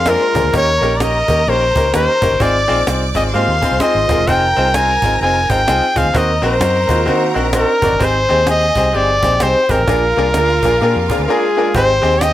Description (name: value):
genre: uptempo 1960s-style soul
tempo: 128 BPM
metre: 4/4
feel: swing 61% on 8ths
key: unclear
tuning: A4 = 440 Hz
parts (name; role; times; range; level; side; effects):
- bright trumpet; melody; 0.0-12.3 s; Ab4 to Ab5; -15 LUFS; left 1 dB; none
- clear symphonic string section; second line; 0.0-12.3 s; F4 to D6; -24 LUFS; right 3 dB; none
- electric guitar through a small old amp; riff; 0.0-0.5, 3.3-8.0, 10.8-11.7 s; Ab3 to Bb4; -22 LUFS; left 1 dB; phaser
- vintage muted fingered electric bass; bass; 0.0-12.3 s; Eb1 to Eb3; -20 LUFS; right 1 dB; none
- bright grand piano; accompaniment; 0.1-12.3 s; Bb3 to Bb5; -18 LUFS; left 2 dB; none
- cajon; drums; 0.1-12.3 s; none; -21 LUFS; equal; none
room: moderate club reverb, RT60 0.5 s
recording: none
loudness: -12 LUFS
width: side -13 dB against mid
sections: 0.0-11.7 A section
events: grand piano fill 10.8-11.7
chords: 0.0 Bb7; 0.5 Eb7; 2.4 Ab6; 4.3 Fm7; 6.1 Ebm6; 8.0 Abmaj7; 9.9 Bb7; 11.7 Abmaj7